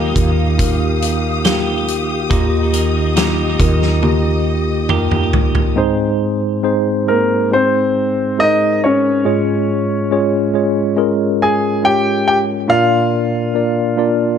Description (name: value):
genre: pop ballad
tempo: 70 BPM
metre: 4/4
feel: straight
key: Ab major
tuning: A4 = 440 Hz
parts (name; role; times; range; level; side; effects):
- mellow tine electric piano; accompaniment; 0.0-14.4 s; Ab2 to D5; -16 LUFS; equal; medium stereo tremolo
- dark studio string section; sustained chords; 0.0-5.7 s; G4 to Eb6; -24 LUFS; left 1 dB; none
- twelve-string electric guitar; arpeggios; 0.0-6.4 s; Eb3 to G4; -24 LUFS; right 5 dB; ping-pong delay
- woody fretless electric bass; bass; 0.0-5.7 s; Eb2; -19 LUFS; equal; wide subtle chorus
- loose indie drum kit; drums; 0.2-5.8 s; hi-hat, kick drum, snare drum, toms; -18 LUFS; equal; none
- warm concert grand piano; melody; 7.1-14.4 s; Bb3 to Ab5; -16 LUFS; left 1 dB; none
room: light reverb, small room ambience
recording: none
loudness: -13 LUFS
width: side -8 dB against mid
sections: 0.0-5.8 A section; 5.8-14.4 B section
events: drum fill 4.0-5.8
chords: 0.0 Ebadd9; 5.8 Ab; 9.3 Db/Ab; 12.7 Bb